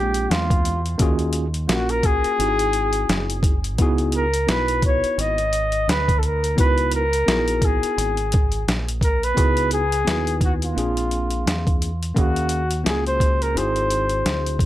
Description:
hip hop, jazz-hop; 86 BPM; 4/4; swing 58% on 16ths; C# dorian; A4 = 440 Hz
breathy flugelhorn; melody; 0.0-14.6 s; E#4 to D#5; -23 LUFS; left 1 dB; analog delay
mellow tine electric piano; accompaniment; 0.0-14.7 s; G#3 to E#5; -26 LUFS; equal; medium stereo tremolo
deep dub fingered electric bass; bass; 0.0-14.7 s; F#1 to E2; -25 LUFS; equal
boom bap sampler-style drum kit; drums; 0.1-14.7 s; hi-hat, kick drum, snare drum; -21 LUFS; equal
little or no reverb; dry, gritty hardware recording; -18 LUFS; side -14 dB against mid
0.0-9.4 A section; 9.4-14.7 B section
0.0 A#7; 1.0 D#m11; 2.4 G#7b13; 3.8 C#m11; 10.8 A#7; 12.2 D#m11; 13.6 G#7b13

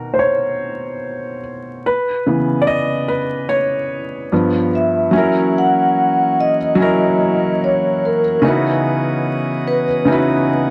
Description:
lo-fi hip hop; 73 BPM; 4/4; swing 59% on 16ths; A4 = 439 Hz
felt-muted upright piano; accompaniment; 0.0-10.7 s; G2 to D#5; -19 LUFS; equal; cassette tape, low-pass filter
vibraphone with soft mallets; melody; 4.8-10.7 s; A#4 to F#5; -20 LUFS; equal; low-pass filter
chamber organ, sparkling flutes; sustained chords; 5.1-10.7 s; E3 to D#5; -26 LUFS; equal; low-pass filter
wet studio ambience, RT60 0.5 s; vinyl crackle; -17 LUFS; mono
0.0-5.1 A section; 5.1-10.7 B section
felt piano solo 0.0-5.1
0.0 Bmaj9; 1.8 C#m7; 4.3 G7; 5.1 F#7; 8.4 C#m11

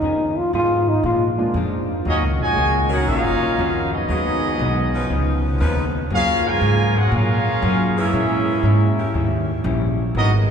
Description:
jazz; 118 BPM; 4/4; swing 67% on 8ths; Eb minor; A4 = 440 Hz
warm trombone; melody; 0.0-1.3 s; Eb4 to F4; -22 LUFS; left 1 dB
vintage hollow-body jazz guitar; accompaniment; 0.0-10.5 s; Ab2 to Bb4; -26 LUFS; left 3 dB
upright bass; bass; 0.0-10.5 s; Eb1 to Bb2; -21 LUFS; equal
warm concert grand piano; accompaniment; 1.4-1.5 s; F3 to F4; -32 LUFS; equal
mellow trumpet section; melody; 2.1-10.3 s; Cb4 to Ab5; -22 LUFS; equal
warm trombone section; second line; 2.1-10.3 s; Bb2 to Gb4; -26 LUFS; right 2 dB
warm saxophone section; sustained chords; 2.9-10.5 s; Fb3 to Cb5; -30 LUFS; left 2 dB
wet cathedral reverb, RT60 4.5 s; recorded in a church or concert hall; -17 LUFS; side -7 dB against mid
0.0-2.1 A section; 2.1-10.5 B section
trombone solo 0.0-2.1
0.0 Fm7b5; 1.0 Bb7; 2.1 Ebm7; 4.1 Abm7; 5.1 Db9; 6.1 Gbmaj9; 8.1 Bbm7b5; 9.2 Eb7b9

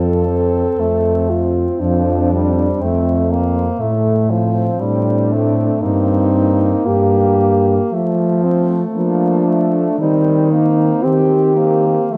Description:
classical, lyrical piece for horn quartet; 58 BPM; 4/4; rubato; A4 = 440 Hz
warm French horn; melody; 0.0-12.1 s; C4 to A4; -20 LUFS; equal
warm French horn; second line; 0.0-12.1 s; A3 to C4; -26 LUFS; equal
warm French horn; accompaniment; 0.0-12.2 s; F3 to C4; -22 LUFS; equal
mellow French horn; bass; 0.0-12.2 s; F2 to F3; -19 LUFS; equal
moderate scoring stage reverb, RT60 1.8 s; dark, warm production, vinyl crackle; -15 LUFS; mono
0.0-12.2 A section
0.0 F; 3.8 Amadd11; 5.8 Eb/G; 7.9 Dm/F; 10.0 Cm/Eb

